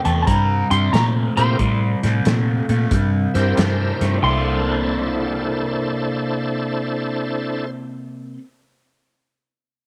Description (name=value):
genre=electric blues shuffle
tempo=91 BPM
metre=4/4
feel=swing 66% on 8ths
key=C mixolydian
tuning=A4 = 439 Hz
part: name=electric guitar through a small old amp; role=melody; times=0.0-8.3 s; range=A5 to C6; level=-25 LUFS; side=equal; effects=subtle chorus
part: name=overdriven semi-hollow guitar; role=riff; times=0.0-8.4 s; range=C3 to A4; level=-26 LUFS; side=equal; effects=phaser
part: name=natural country drum kit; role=drums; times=0.0-4.1 s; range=hi-hat, kick drum, snare drum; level=-25 LUFS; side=equal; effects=none
part: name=vintage muted fingered electric bass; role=bass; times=0.1-8.3 s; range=C2 to Bb2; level=-22 LUFS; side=equal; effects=none
part: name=bright tonewheel organ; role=accompaniment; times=1.4-7.7 s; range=C4 to C5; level=-27 LUFS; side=equal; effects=slow rotary speaker, overdrive, chorus vibrato
room=light reverb, small room ambience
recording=none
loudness=-20 LUFS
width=mono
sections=0.0-4.2 A section; 4.2-6.9 B section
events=none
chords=0.0 C7; 4.2 C13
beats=0.28 0.94 | 1.60 2.25 2.92 3.57 | 4.23 4.89 5.55 6.21